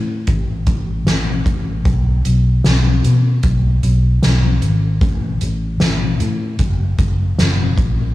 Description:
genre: dream pop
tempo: 76 BPM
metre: 4/4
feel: straight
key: unclear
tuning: A4 = 441 Hz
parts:
  - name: vintage muted fingered electric bass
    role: bass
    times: 0.0-8.1 s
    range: F#1 to B2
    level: -16 LUFS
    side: equal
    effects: none
  - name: soft-mallet drum kit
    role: drums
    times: 0.3-8.0 s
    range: hi-hat, kick drum, snare drum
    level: -18 LUFS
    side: equal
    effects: none
room: little or no reverb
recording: blown-out, overdriven recording, overdrive, small room ambience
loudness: -14 LUFS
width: side -16 dB against mid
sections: 0.0-8.1 A section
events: none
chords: none

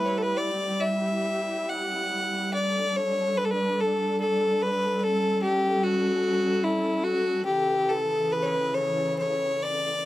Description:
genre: celtic folk, Celtic slow air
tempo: 67-75 BPM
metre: 3/4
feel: rubato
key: E dorian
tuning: A4 = 438 Hz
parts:
  - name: clear fiddle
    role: melody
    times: 0.0-10.1 s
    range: E4 to F#5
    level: -25 LUFS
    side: left 1 dB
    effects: none
  - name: fingerpicked steel-string acoustic guitar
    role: accompaniment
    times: 0.0-0.5 s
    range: E4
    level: -34 LUFS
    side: right 2 dB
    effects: none
  - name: muted studio string section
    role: sustained chords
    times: 0.0-10.1 s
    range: C#3 to A4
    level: -29 LUFS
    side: equal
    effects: none
room: light reverb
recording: dry, close 1970s-style studio recording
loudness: -23 LUFS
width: side -15 dB against mid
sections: 0.0-10.1 A section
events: none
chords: 0.0 Emadd9; 2.6 D5; 5.0 F#m; 7.5 A

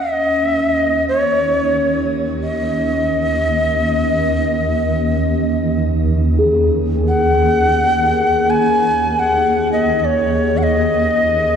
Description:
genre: world meditative, free-time meditation music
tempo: free time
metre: none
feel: none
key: Eb minor pentatonic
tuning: A4 = 444 Hz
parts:
  - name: breathy Native American-style cedar flute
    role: melody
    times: 0.0-11.6 s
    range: Db5 to Ab5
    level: -17 LUFS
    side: left 1 dB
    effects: slapback echo, shimmer reverb
  - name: shimmering ambient pad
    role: drone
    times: 0.3-11.6 s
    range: Eb2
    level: -18 LUFS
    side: right 1 dB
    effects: chorus, built-in reverb
  - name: quartz singing bowl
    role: texture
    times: 0.0-11.6 s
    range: Db4 to Ab4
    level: -21 LUFS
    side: left 2 dB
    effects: shimmer reverb
room: wet echo chamber reverb, RT60 2.1 s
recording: dark, warm production, nothing above 10.8 kHz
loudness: -14 LUFS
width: side -7 dB against mid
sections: 0.0-11.6 A section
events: none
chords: none

